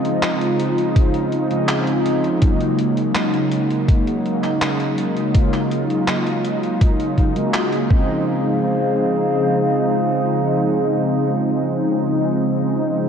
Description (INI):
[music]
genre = vaporwave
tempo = 82 BPM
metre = 4/4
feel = straight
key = Db major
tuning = A4 = 441 Hz
[part]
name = mellow synth brass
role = accompaniment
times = 0.0-13.1 s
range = Db3 to F4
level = -18 LUFS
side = equal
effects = wide subtle chorus, analog delay
[part]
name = warbly tape-like pad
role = sustained chords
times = 0.0-12.0 s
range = Ab4 to Ab5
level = -25 LUFS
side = left 1 dB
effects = chorus, built-in reverb
[part]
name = gated 80s digital drum machine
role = drums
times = 0.0-7.9 s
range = handclaps, hi-hat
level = -27 LUFS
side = equal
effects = gated reverb
[part]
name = electronic kick drum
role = drums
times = 1.0-8.1 s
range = none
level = -15 LUFS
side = equal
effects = none
[sound]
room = wet cathedral reverb, RT60 6.0 s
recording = dreamy mix soaked in reverb, cassette tape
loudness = -16 LUFS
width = side -7 dB against mid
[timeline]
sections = 0.0-8.3 A section; 8.3-11.2 B section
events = none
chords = 0.0 Dbmaj7; 2.4 Ab9sus4; 7.9 Dbmaj7